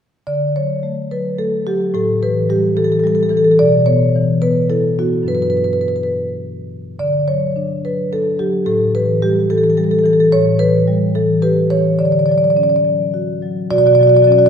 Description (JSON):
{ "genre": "classical, contemporary piece for solo marimba", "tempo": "72 BPM (dotted quarters)", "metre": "6/8", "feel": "rubato", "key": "D major", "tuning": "A4 = 439 Hz", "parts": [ { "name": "marimba with medium mallets", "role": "solo", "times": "0.3-14.5 s", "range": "G2 to D5", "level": "-13 LUFS", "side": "equal", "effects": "none" } ], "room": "wet recital hall reverb, RT60 1.4 s", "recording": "minimal, uncompressed stereo recording", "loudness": "-13 LUFS", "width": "side -7 dB against mid", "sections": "0.3-13.7 A section", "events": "none", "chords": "0.3 Dmaj7; 1.9 A5; 3.6 Bsus24; 5.3 Gmaj7; 7.0 Dmaj7; 8.7 A5; 12.0 Dmaj7; 13.7 Bmadd9" }